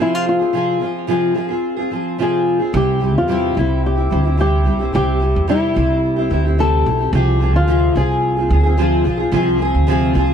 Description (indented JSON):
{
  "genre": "acoustic pop",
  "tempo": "109 BPM",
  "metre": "4/4",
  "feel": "straight",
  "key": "C major",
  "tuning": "A4 = 439 Hz",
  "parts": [
    { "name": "flamenco guitar", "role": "melody", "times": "0.0-10.3 s", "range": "E4 to A4", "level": "-20 LUFS", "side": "left 2 dB", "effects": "plate reverb, ping-pong delay" },
    { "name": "fingerpicked steel-string acoustic guitar", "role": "accompaniment", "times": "0.0-10.3 s", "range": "C3 to Ab4", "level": "-18 LUFS", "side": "equal", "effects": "double-tracked left and right" },
    { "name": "upright bass", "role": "bass", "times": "2.7-10.3 s", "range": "B1 to E2", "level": "-17 LUFS", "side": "right 1 dB", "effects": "none" }
  ],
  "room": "light reverb",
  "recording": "dark, warm production",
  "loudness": "-14 LUFS",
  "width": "side -8 dB against mid",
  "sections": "0.0-2.7 A section; 2.7-10.3 B section",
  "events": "none",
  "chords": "0.0 Fm/C; 2.7 C; 7.1 Fm"
}